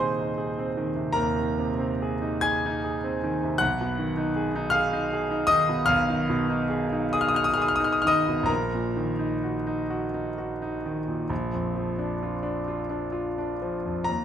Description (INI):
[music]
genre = classical, romantic nocturne for solo piano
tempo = 41-53 BPM (dotted quarters)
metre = 12/8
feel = rubato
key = unclear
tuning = A4 = 440 Hz
[part]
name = clear concert grand piano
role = solo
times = 0.0-14.2 s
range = Eb1 to Ab6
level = -24 LUFS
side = equal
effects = none
[sound]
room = light reverb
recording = close, detailed microphones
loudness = -24 LUFS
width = side -9 dB against mid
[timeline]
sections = 0.0-14.1 A section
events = none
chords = 0.0 Ab/Eb; 3.6 Abm/Cb; 8.5 Ebm/Bb; 11.3 Bb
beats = 1.15 2.43 | 3.61 4.75 5.90 7.14 | 8.49 9.89 11.31 12.67 | 14.09